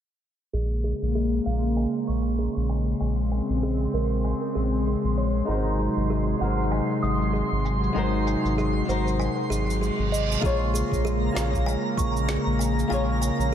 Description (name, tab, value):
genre	sunset chillout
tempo	97 BPM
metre	4/4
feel	swing 58% on 16ths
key	Bb minor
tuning	A4 = 439 Hz
part	airy breathy pad	sustained chords	0.5-13.5 s	C3 to C4	-27 LUFS	left 1 dB	chorus
part	kalimba	arpeggios	0.5-13.5 s	Ab4 to Eb6	-32 LUFS	right 2 dB	low-pass filter, diffuse ambient delay
part	round analog bass	bass	0.5-13.5 s	Ab1 to Bb1	-26 LUFS	equal	none
part	electronic cabasa and snare drum	drums	0.5-13.5 s	none	-36 LUFS	right 2 dB	none
part	twinkling granular texture	texture	2.4-13.5 s	Bb5 to C6	-35 LUFS	right 1 dB	built-in reverb
part	flamenco guitar	accompaniment	5.5-13.5 s	Ab3 to Db5	-29 LUFS	moving between left 4 dB and right 3 dB	auto-pan, low-pass filter, diffuse ambient delay
part	reverse cymbal	sound effects	9.7-10.4 s	none	-35 LUFS	right 8 dB	none
part	electronic kick drum	drums	10.4-12.1 s	none	-28 LUFS	equal	none
room	light reverb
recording	low-pass filter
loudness	-22 LUFS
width	side -9 dB against mid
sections	0.5-10.4 A section; 10.4-13.5 B section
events	filter sweep on analog synth bass 0.5-10.4; filter sweep on kalimba 0.5-10.4; filter sweep 0.5-10.4; reverse cymbal 9.7-10.4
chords	0.5 Bbm7; 5.5 Ab7; 10.4 Bbm7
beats	| 0.54 1.15 1.77 2.39 | 3.01 3.63 4.25 4.87 | 5.48 6.10 6.72 7.34 | 7.96 8.58 9.20 9.81 | 10.43 11.05 11.67 12.29 | 12.91 13.53